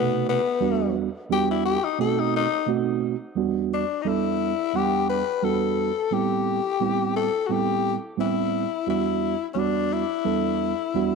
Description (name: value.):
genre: blues.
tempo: 87 BPM.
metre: 4/4.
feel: swing 54% on 16ths.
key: E minor.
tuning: A4 = 440 Hz.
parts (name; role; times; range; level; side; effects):
growling tenor saxophone; melody; 0.0-11.2 s; B3 to B4; -24 LUFS; left 10 dB; slapback echo.
reed electric piano; accompaniment; 0.0-11.2 s; E2 to F#5; -25 LUFS; right 10 dB; none.
room: wet spring reverb, RT60 2.4 s.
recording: 1960s-style stereo with parts hard left and right.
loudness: -22 LUFS.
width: side -4 dB against mid.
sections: 0.0-3.4 A section; 3.4-11.2 B section.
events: tenor saxophone solo 0.0-3.4.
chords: 0.0 B7b9; 0.6 Em7; 2.0 B7b9; 3.4 Em7; 6.1 Am7; 8.9 Em7.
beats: | 0.62 1.31 2.00 2.68 | 3.37 4.06 4.75 5.44 | 6.13 6.82 7.50 8.19 | 8.88 9.57 10.26 10.95.